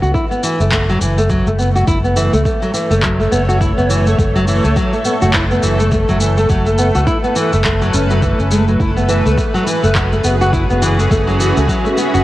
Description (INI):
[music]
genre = organic downtempo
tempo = 104 BPM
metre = 4/4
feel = swing 58% on 16ths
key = unclear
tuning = A4 = 441 Hz
[part]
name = granular cloud pad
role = sustained chords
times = 0.6-12.2 s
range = A3 to E5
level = -20 LUFS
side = equal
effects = built-in reverb, vintage 12-bit sampler grit, sidechain pumping, shimmer reverb
[part]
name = nylon-string guitar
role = arpeggios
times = 0.0-12.2 s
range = E3 to F#4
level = -16 LUFS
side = equal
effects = ping-pong delay, shimmer reverb
[part]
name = fretless electric bass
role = bass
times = 0.0-12.2 s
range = F#1 to C#2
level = -16 LUFS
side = equal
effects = wide subtle chorus, sidechain pumping
[part]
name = electronic shaker and handclaps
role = drums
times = 0.0-12.2 s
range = none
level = -23 LUFS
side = left 1 dB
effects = overdrive
[part]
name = electronic kick drum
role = drums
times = 0.1-11.8 s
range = none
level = -19 LUFS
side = equal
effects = overdrive
[sound]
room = light reverb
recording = worn, warbling old tape, cassette tape, warbly pitch drift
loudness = -12 LUFS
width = side -16 dB against mid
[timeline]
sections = 0.0-12.2 A section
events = none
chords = 0.0 Aadd9/F#